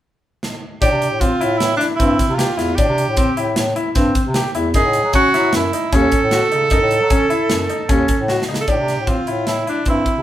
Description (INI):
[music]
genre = progressive instrumental, band music in an uneven meter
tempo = 152 BPM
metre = 5/4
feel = straight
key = A minor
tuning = A4 = 441 Hz
[part]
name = tight metal drum kit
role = drums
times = 0.4-10.2 s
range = hi-hat, kick drum, snare drum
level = -20 LUFS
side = equal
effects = none
[part]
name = clear tenor saxophone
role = melody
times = 0.8-10.2 s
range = D4 to A4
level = -18 LUFS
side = right 3 dB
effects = none
[part]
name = bright concert grand piano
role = arpeggios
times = 0.8-10.1 s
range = C4 to G4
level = -20 LUFS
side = left 2 dB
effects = none
[part]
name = warm bass clarinet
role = bass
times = 0.8-10.2 s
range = D#2 to F#3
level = -21 LUFS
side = left 1 dB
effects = none
[sound]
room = wet studio reverb, RT60 0.5 s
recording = band playing live in one room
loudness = -14 LUFS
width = side -12 dB against mid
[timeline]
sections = 0.8-8.7 A section; 8.7-10.2 B section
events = drum fill 0.4-0.8, 8.3-8.7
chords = 0.0 N.C.; 0.8 Am7; 4.7 F#m; 8.7 Am7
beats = 0.02 0.41 | 0.81 1.20 1.60 1.99 2.38 | 2.78 3.17 3.56 3.96 4.35 | 4.75 5.14 5.53 5.93 6.32 | 6.71 7.11 7.50 7.89 8.29 | 8.68 9.08 9.47 9.87